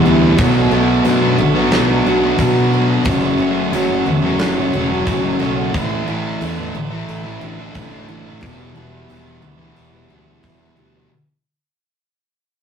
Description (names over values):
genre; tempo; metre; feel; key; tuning
rock, shoegaze and dream pop; 90 BPM; 4/4; straight; unclear; A4 = 439 Hz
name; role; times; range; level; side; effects
picked plugged-in twelve-string acoustic guitar; arpeggios; 0.0-11.1 s; E3 to G4; -23 LUFS; right 3 dB; none
crunchy overdriven guitar; riff; 0.0-11.1 s; E2 to F#4; -20 LUFS; right 2 dB; none
thick fuzz guitar; riff; 0.0-11.1 s; E2 to B3; -18 LUFS; left 3 dB; distortion
growling fingered electric bass; bass; 0.0-11.0 s; E1 to B2; -24 LUFS; right 1 dB; overdrive
gated 80s drum kit; drums; 0.4-10.6 s; hi-hat, kick drum, snare drum; -20 LUFS; equal; none
room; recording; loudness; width
wet studio reverb, RT60 0.5 s; rough rehearsal-room recording, warm saturation; -14 LUFS; side -7 dB against mid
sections
0.0-11.1 A section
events
fade-out 0.0-11.1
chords
0.4 Bm7; 3.1 F#m; 5.7 Asus4; 8.4 Em